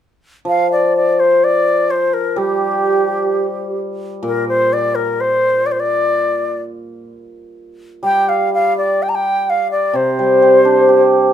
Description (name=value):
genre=chinese traditional, Chinese chamber ensemble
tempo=64 BPM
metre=2/4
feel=rubato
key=G yu mode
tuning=A4 = 441 Hz
part: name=bright reedy xiao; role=melody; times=0.5-11.3 s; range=G4 to Bb5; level=-15 LUFS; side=left 1 dB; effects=none
part: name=hammered dulcimer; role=accompaniment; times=0.5-11.3 s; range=Bb2 to G4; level=-16 LUFS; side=equal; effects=none
room=moderate small room reverb, RT60 0.6 s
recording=none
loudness=-13 LUFS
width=side -10 dB against mid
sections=0.5-11.3 A section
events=none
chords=none